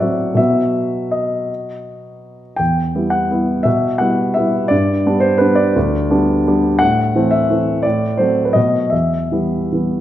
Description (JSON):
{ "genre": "classical, piano waltz", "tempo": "147-182 BPM", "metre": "3/4", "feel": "rubato", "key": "E minor", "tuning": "A4 = 440 Hz", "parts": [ { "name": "warm grand piano", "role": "solo", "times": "0.0-10.0 s", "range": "D2 to G5", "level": "-14 LUFS", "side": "equal", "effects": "none" } ], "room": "wet recital hall reverb, RT60 1.4 s", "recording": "none", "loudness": "-14 LUFS", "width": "side -12 dB against mid", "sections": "0.0-10.0 A section", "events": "none", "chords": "0.4 B; 2.6 Em; 4.7 G; 6.8 Am; 7.8 F#dim/A; 8.6 B7; 8.9 Em", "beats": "0.01 | 0.38 0.75 1.13 | 1.49 1.85 2.23 | 2.60 2.95 3.31 | 3.66 4.00 4.36 | 4.71 5.06 5.41 | 5.76 6.10 6.46 | 6.81 7.15 7.50 | 7.84 8.19 8.56 | 8.93 9.32 9.72" }